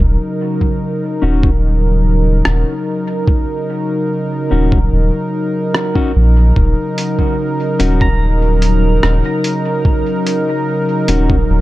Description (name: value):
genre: ambient dub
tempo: 73 BPM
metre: 4/4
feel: straight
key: Eb minor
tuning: A4 = 440 Hz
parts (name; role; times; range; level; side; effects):
- warm analog pad; sustained chords; 0.0-11.6 s; Db3 to Bb4; -17 LUFS; equal; chorus
- soft dub sub bass; bass; 0.0-11.6 s; Eb1 to Bb1; -12 LUFS; equal; none
- electronic kick drum; drums; 0.6-11.5 s; none; -15 LUFS; equal; overdrive
- mellow electric guitar; stabs; 1.2-11.4 s; Db4 to Gb4; -22 LUFS; left 4 dB; dub echo
- lo-fi sampler-style drum kit; drums; 2.5-11.3 s; hi-hat, rim click; -20 LUFS; equal; overdrive, dub echo
- pedal steel guitar; arpeggios; 8.0-10.2 s; Bb5; -28 LUFS; right 2 dB; dub echo
room: little or no reverb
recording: dark, warm production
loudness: -12 LUFS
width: side -16 dB against mid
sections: 0.0-11.6 A section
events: none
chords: 0.0 Ebm7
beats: 0.81 1.63 2.46 | 3.28 4.10 4.92 5.74 | 6.57 7.39 8.21 9.03 | 9.85 10.67 11.50